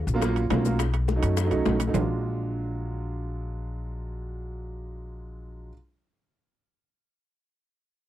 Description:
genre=Afro-Cuban jazz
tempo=209 BPM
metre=4/4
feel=straight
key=unclear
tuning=A4 = 439 Hz
part: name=upright bass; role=bass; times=0.0-5.7 s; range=Bb1 to F#2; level=-29 LUFS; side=left 1 dB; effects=none
part: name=warm upright piano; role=accompaniment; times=0.1-5.7 s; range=Gb3 to F4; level=-30 LUFS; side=right 4 dB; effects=none
part: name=congas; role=percussion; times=0.1-2.0 s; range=none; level=-32 LUFS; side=left 5 dB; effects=none
part: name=maracas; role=percussion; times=0.1-2.0 s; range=none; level=-41 LUFS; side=left 25 dB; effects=none
part: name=bongos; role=percussion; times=0.2-2.0 s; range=none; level=-35 LUFS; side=left 14 dB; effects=none
part: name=timbales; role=percussion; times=0.2-2.0 s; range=none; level=-33 LUFS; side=right 8 dB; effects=none
room=little or no reverb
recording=dry, close 1970s-style studio recording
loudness=-24 LUFS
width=side -13 dB against mid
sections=0.0-1.9 A section; 1.9-4.2 B section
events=none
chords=0.0 Ebm9 (rootless); 0.8 B7; 1.9 Bb7b13

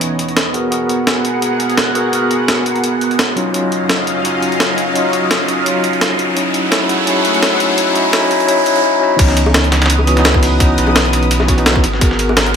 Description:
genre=liquid drum and bass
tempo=170 BPM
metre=4/4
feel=swing 54% on 16ths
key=C# dorian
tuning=A4 = 440 Hz
part: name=tine electric piano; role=accompaniment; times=0.0-12.6 s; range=E3 to A#4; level=-16 LUFS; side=left 1 dB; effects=medium tremolo, tape echo
part: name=lush unison pad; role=sustained chords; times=0.0-12.6 s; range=E3 to E6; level=-20 LUFS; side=right 1 dB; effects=chorus, phaser, sidechain pumping
part: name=jungle sampler-style drum kit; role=drums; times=0.0-12.5 s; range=crash cymbal, hi-hat, snare drum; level=-17 LUFS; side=equal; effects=none
part: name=riser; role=sound effects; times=1.0-8.8 s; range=none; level=-22 LUFS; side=equal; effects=none
part: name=sub bass with octave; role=bass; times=9.2-12.6 s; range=G#1 to C#2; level=-16 LUFS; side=equal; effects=none
part: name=dusty soul sampler-style drum kit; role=drums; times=9.2-12.5 s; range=hi-hat, ride cymbal, snare drum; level=-19 LUFS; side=right 1 dB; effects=high-pass filter on cymbals, high-pass filter on snare, high-pass filter on hats, high-pass filter on room
part: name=electronic kick drum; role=drums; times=9.2-12.1 s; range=none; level=-13 LUFS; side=equal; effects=none
part: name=bongos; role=percussion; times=9.5-12.4 s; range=none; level=-22 LUFS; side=left 2 dB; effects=none
room=moderate plate reverb, RT60 1.2 s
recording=high-pass filter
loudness=-11 LUFS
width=side -7 dB against mid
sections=0.0-9.2 A section; 9.2-12.6 B section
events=build-up 0.0-9.2; riser 1.0-8.8; drop 9.2-12.6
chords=0.0 C#m9; 0.5 G#m9; 3.4 D#m9; 6.4 F#m9; 9.2 C#m9; 11.8 G#m9

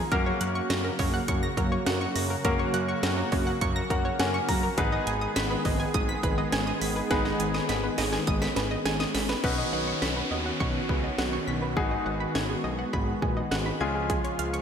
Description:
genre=synth-pop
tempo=103 BPM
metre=4/4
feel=straight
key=unclear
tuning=A4 = 441 Hz
part: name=bright concert grand piano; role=accompaniment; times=0.0-14.6 s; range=Ab3 to Bb5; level=-33 LUFS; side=left 3 dB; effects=none
part: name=brassy analog pad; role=sustained chords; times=0.0-14.6 s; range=Db3 to Ab4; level=-31 LUFS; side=equal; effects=chorus, tremolo
part: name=analog pluck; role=arpeggios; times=0.0-14.6 s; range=Ab4 to Cb7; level=-33 LUFS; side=right 2 dB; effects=chorus, ping-pong delay
part: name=fat analog bass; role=bass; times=0.0-14.6 s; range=Ab1 to Gb2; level=-32 LUFS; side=equal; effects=none
part: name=house drum kit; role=drums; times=0.1-14.6 s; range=crash cymbal, hi-hat, kick drum, snare drum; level=-30 LUFS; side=equal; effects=overdrive, gated reverb
part: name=downlifter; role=sound effects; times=9.4-14.1 s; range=none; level=-36 LUFS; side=equal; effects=none
room=moderate lush hall reverb, RT60 2.8 s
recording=bright 1980s-style digital production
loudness=-25 LUFS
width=side -8 dB against mid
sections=0.0-9.4 A section; 9.4-14.6 B section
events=grand piano fill 3.6-4.8; drum fill 7.1-9.4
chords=0.1 Gb; 4.8 Abm; 9.4 Badd9; 11.8 Abm7; 13.8 Db

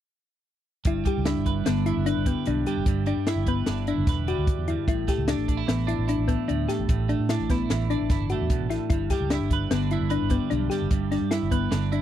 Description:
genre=math rock and midwest emo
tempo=149 BPM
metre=5/4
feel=straight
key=G major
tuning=A4 = 441 Hz
part: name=compact cocktail drum kit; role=drums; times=0.8-12.0 s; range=hi-hat, kick drum, snare drum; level=-26 LUFS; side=equal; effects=none
part: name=twelve-string electric guitar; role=accompaniment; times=0.9-12.0 s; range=G2 to B4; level=-29 LUFS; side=right 10 dB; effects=lush chorus
part: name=thumb-piano-like synth pluck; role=arpeggios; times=0.9-12.0 s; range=B3 to G4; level=-28 LUFS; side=left 6 dB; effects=chorus
part: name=fingered electric bass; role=bass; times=0.9-12.0 s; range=G1 to A2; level=-28 LUFS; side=equal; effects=none
room=little or no reverb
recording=dry, close 1970s-style studio recording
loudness=-22 LUFS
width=side -11 dB against mid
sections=0.9-12.0 A section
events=none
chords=0.9 G6; 4.9 A7sus4; 8.9 G6

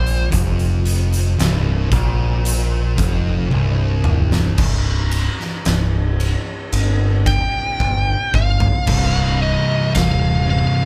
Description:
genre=stoner and doom metal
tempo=56 BPM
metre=4/4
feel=straight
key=C minor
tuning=A4 = 443 Hz
part: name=fuzz lead guitar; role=melody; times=0.0-0.3, 7.3-10.9 s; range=C5 to G5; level=-24 LUFS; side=equal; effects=distortion
part: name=thick fuzz guitar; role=riff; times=0.0-10.9 s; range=C2 to C3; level=-26 LUFS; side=equal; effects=distortion
part: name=thick fuzz guitar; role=riff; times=0.0-10.9 s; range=C2 to C3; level=-25 LUFS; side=equal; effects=distortion
part: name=growling picked electric bass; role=bass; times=0.0-10.6 s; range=C1 to Bb1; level=-21 LUFS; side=equal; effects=overdrive
part: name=oversized low-tuned drum kit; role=drums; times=0.1-10.2 s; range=crash cymbal, hi-hat, kick drum, ride cymbal, snare drum, toms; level=-24 LUFS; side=equal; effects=none
room=moderate large studio reverb, RT60 1.4 s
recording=band playing live in one room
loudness=-18 LUFS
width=mono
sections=0.0-4.6 A section; 4.6-8.9 B section; 8.9-10.9 C section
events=lead electric guitar solo 0.0-4.6; drum fill 3.5-4.6, 7.8-8.9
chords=0.0 N.C.; 4.6 C5; 8.9 Cm

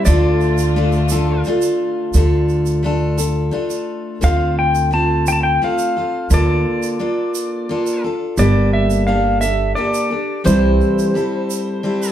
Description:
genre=acoustic folk duo or small band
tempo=86 BPM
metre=3/4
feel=straight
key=D minor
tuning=A4 = 443 Hz
part: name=pedal steel guitar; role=melody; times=0.0-12.1 s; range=C5 to A5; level=-20 LUFS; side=equal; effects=slapback echo
part: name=picked steel-string acoustic guitar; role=accompaniment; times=0.0-12.1 s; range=C3 to A4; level=-19 LUFS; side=left 1 dB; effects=none
part: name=dark chamber string section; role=sustained chords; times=0.0-2.1 s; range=D3 to F4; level=-25 LUFS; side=left 1 dB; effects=none
part: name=upright bass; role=bass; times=0.1-10.8 s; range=G1 to D2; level=-16 LUFS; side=equal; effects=none
part: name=egg shaker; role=percussion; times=0.1-12.1 s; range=none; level=-30 LUFS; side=right 9 dB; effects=none
room=wet studio reverb, RT60 0.6 s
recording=heard from further back in the room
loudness=-15 LUFS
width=side -10 dB against mid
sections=0.0-2.1 A section; 2.1-4.2 B section; 4.2-12.1 C section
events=none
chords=0.1 Dm; 4.2 Dm7; 6.3 Bbmaj7/D; 8.4 Gmadd9; 10.5 C6

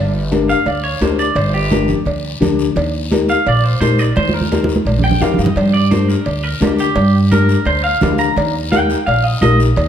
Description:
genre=latin, cumbia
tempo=172 BPM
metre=4/4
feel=straight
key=G minor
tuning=A4 = 442 Hz
part: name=upright bass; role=bass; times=0.0-9.9 s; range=G1 to G2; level=-16 LUFS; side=equal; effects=none
part: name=dark upright piano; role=accompaniment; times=0.3-9.7 s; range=D4 to Bb4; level=-19 LUFS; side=left 6 dB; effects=none
part: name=congas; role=percussion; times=0.3-9.9 s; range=none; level=-20 LUFS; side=right 2 dB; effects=none
part: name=cowbell and timbales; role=percussion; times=0.3-9.9 s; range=none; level=-24 LUFS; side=right 3 dB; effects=none
part: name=guiro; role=percussion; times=0.3-9.9 s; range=none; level=-31 LUFS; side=left 6 dB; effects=none
part: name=clean electric guitar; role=melody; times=0.5-9.6 s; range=G4 to Bb5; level=-19 LUFS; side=right 1 dB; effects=spring reverb
room=moderate large studio reverb, RT60 1.4 s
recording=none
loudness=-12 LUFS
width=side -9 dB against mid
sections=0.0-9.9 A section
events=clean electric guitar solo 0.0-9.9; drum fill 4.2-5.6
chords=0.0 Gm; 2.8 Eb; 5.6 Gm; 8.4 Eb

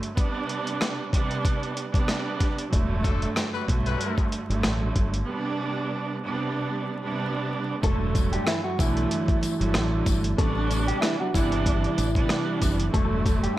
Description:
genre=hip hop, boom-bap hip-hop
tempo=94 BPM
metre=4/4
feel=swing 54% on 16ths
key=E minor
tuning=A4 = 440 Hz
part: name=warm studio string section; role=accompaniment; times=0.0-13.6 s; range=G2 to D4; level=-28 LUFS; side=right 3 dB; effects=none
part: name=dusty soul sampler-style drum kit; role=drums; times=0.0-13.6 s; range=hi-hat, kick drum, rim click, snare drum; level=-26 LUFS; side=equal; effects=overdrive, vintage 12-bit sampler grit
part: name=deep dub fingered electric bass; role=bass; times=2.7-13.5 s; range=E1 to B1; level=-27 LUFS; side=equal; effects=none
part: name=clear trumpet section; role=stabs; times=3.0-4.3 s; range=F#3 to B4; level=-33 LUFS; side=left 9 dB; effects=slapback echo
part: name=mellow electric guitar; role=melody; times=7.8-13.6 s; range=E3 to A4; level=-28 LUFS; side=equal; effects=slapback echo
part: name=tambourine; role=percussion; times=8.2-13.4 s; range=none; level=-40 LUFS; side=left 15 dB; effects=none
room=light reverb, studio reverb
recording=vinyl crackle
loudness=-23 LUFS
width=side -15 dB against mid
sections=0.0-7.8 A section; 7.8-13.6 B section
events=break 0.0-2.7, 5.3-7.8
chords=0.2 Gadd11/C; 2.7 Em11; 5.3 Gadd11/C; 7.8 Em11; 10.4 Am11; 12.9 Em11

